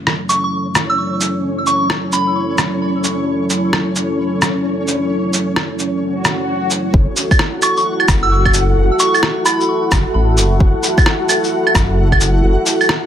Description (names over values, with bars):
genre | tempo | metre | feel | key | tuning
future garage | 131 BPM | 4/4 | swing 63% on 16ths | F# minor | A4 = 443 Hz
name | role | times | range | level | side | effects
dark analog pad | sustained chords | 0.0-13.1 s | F#3 to A4 | -19 LUFS | equal | chorus, sidechain pumping
flickering grainy texture | texture | 0.3-13.1 s | C#4 to F#5 | -24 LUFS | left 1 dB | built-in reverb
electronic rim click, cabasa, shaker and claves | drums | 0.1-13.0 s | none | -16 LUFS | right 1 dB | overdrive
soft synth bell | melody | 0.3-2.6, 7.6-9.9 s | B5 to E6 | -19 LUFS | right 1 dB | chorus, tape echo
swell | sound effects | 6.2-6.9 s | none | -22 LUFS | left 4 dB | none
dark detuned saw bass | bass | 6.9-12.6 s | F#1 to A1 | -14 LUFS | equal | sidechain pumping
electronic kick drum | drums | 6.9-12.2 s | none | -15 LUFS | equal | overdrive
room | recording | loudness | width
light reverb, digital ambience | dense, heavily limited modern master | -13 LUFS | side -10 dB against mid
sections
0.0-6.9 A section; 6.9-13.1 B section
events
swell 6.2-6.9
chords
0.0 F#m7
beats
0.07 0.53 0.98 | 1.44 1.90 2.36 2.82 | 3.27 3.73 4.19 4.65 | 5.11 5.57 6.02 6.48 | 6.94 7.40 7.86 8.31 | 8.77 9.23 9.69 10.14 | 10.60 11.06 11.52 11.98 | 12.44 12.89